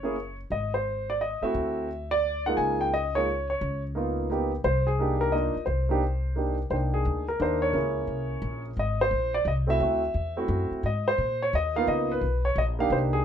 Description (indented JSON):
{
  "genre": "jazz piano trio",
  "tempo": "174 BPM",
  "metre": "3/4",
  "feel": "swing 64% on 8ths",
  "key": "unclear",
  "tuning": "A4 = 440 Hz",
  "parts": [
    { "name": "warm concert grand piano", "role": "melody", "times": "0.0-13.2 s", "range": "Ab3 to Ab5", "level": "-26 LUFS", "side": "right 1 dB", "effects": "none" },
    { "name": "upright bass", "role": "bass", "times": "0.0-13.2 s", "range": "F#1 to Bb2", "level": "-29 LUFS", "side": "left 1 dB", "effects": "none" }
  ],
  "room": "moderate studio ambience, RT60 0.5 s",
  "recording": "nothing above 11.0 kHz",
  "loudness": "-24 LUFS",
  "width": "side -8 dB against mid",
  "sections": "0.0-6.7 A section; 6.7-13.2 A section",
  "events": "none",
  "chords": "0.0 F#9; 0.5 Ab; 1.5 D9; 2.6 Db69; 4.6 Cm9; 7.7 Bbm9b5; 8.8 Abadd9; 9.8 D9; 10.8 Ebsus4; 11.9 Db13"
}